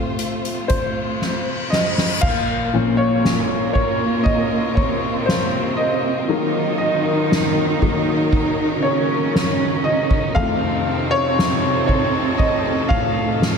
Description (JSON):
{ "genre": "pop ballad", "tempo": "59 BPM", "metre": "4/4", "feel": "straight", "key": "Bb harmonic minor", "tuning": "A4 = 440 Hz", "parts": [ { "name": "warm upright piano", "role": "accompaniment", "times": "0.0-13.6 s", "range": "F2 to F5", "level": "-21 LUFS", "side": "left 2 dB", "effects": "slapback echo" }, { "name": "dark studio string section", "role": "sustained chords", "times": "0.0-13.6 s", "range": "Bb2 to C5", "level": "-25 LUFS", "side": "equal", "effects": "none" }, { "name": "soft-mallet drum kit", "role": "drums", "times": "0.2-13.6 s", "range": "crash cymbal, hi-hat, kick drum, ride cymbal, snare drum", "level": "-22 LUFS", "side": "right 1 dB", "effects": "none" }, { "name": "reverse cymbal and impact", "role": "sound effects", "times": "0.6-6.3 s", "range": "none", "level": "-28 LUFS", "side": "left 2 dB", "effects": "none" }, { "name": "warm studio cello section", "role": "second line", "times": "2.2-13.6 s", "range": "A2 to Eb4", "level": "-23 LUFS", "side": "right 2 dB", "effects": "ping-pong delay" } ], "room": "moderate scoring stage reverb, RT60 2.0 s", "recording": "big arena sound", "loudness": "-17 LUFS", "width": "side -6 dB against mid", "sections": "0.0-2.2 A section; 2.2-13.6 B section", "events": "upright piano solo 0.0-2.2, 2.2-13.6; reverse cymbal 0.6-2.2; drum fill 1.2-2.2; impact 2.2-6.3", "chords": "0.0 F; 2.2 Bbmadd9; 6.3 Ebmadd9; 10.4 F7", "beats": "0.19 1.21 | 2.23 3.24 4.26 5.28 | 6.29 7.31 8.33 9.34 | 10.36 11.38 12.39 13.41" }